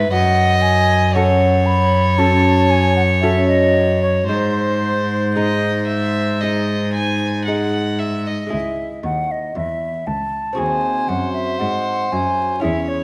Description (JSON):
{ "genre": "classical, baroque-style sonata movement with continuo", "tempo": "58 BPM", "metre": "4/4", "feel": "straight", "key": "unclear", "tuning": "A4 = 440 Hz", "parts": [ { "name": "bright baroque flute", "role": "melody", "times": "0.0-13.0 s", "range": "B#4 to B5", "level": "-23 LUFS", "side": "equal", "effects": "none" }, { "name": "rich violin", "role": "second line", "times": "0.0-13.0 s", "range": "B4 to G#5", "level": "-24 LUFS", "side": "equal", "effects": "none" }, { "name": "lute", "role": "accompaniment", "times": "0.0-13.0 s", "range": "D#2 to A4", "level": "-25 LUFS", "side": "equal", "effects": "none" }, { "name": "rich cello", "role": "bass", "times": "0.0-13.0 s", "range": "C#2 to G#2", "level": "-22 LUFS", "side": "equal", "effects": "none" } ], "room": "wet recital hall reverb, RT60 1.6 s", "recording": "vinyl crackle", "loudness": "-18 LUFS", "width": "mono", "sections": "0.0-8.5 A section; 8.5-13.0 A section", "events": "none", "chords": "0.1 F#m; 4.3 G#; 8.5 C#m; 10.6 G#7/D#" }